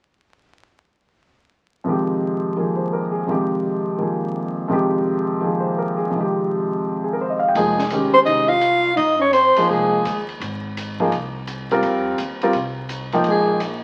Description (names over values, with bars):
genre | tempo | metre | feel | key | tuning
modal jazz | 168 BPM | 4/4 | swing 65% on 8ths | F minor | A4 = 440 Hz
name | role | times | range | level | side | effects
clear concert grand piano | accompaniment | 1.8-13.6 s | F2 to G5 | -22 LUFS | equal | none
upright bass | bass | 7.5-13.8 s | F1 to F2 | -35 LUFS | equal | none
warm soprano saxophone | melody | 7.6-10.2, 13.3-13.6 s | Ab4 to F5 | -19 LUFS | equal | none
dark trombone | second line | 7.6-10.2, 13.3-13.6 s | Ab3 to F4 | -26 LUFS | equal | none
compact cocktail drum kit | drums | 7.6-13.7 s | hi-hat, kick drum, ride cymbal, snare drum | -35 LUFS | equal | none
room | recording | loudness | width
moderate large studio reverb, RT60 1.3 s | very old 78 rpm record, vinyl crackle | -20 LUFS | mono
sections
1.9-7.6 A section; 7.6-13.8 B section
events
none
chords
1.9 Fm9; 13.3 Bb7(no3)